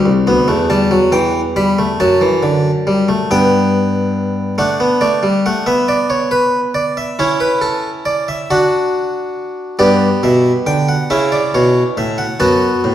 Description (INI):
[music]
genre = classical, baroque-style 4-part fugue for harpsichord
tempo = 46 BPM (dotted quarters)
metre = 6/8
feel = straight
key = G major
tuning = A4 = 440 Hz
[part]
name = harpsichord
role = solo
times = 0.0-12.9 s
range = C2 to B5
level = -12 LUFS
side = equal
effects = none
[sound]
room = wet recital hall reverb, RT60 1.4 s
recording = heard from further back in the room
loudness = -12 LUFS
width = side -11 dB against mid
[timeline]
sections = 0.0-9.8 A section; 9.8-12.9 B section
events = none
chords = 0.0 G; 0.7 A5/E; 2.0 D/F#; 3.3 G; 4.6 D/A; 5.9 E5/B; 7.2 A/C#; 8.5 D; 9.8 G; 11.1 A69; 12.4 F#m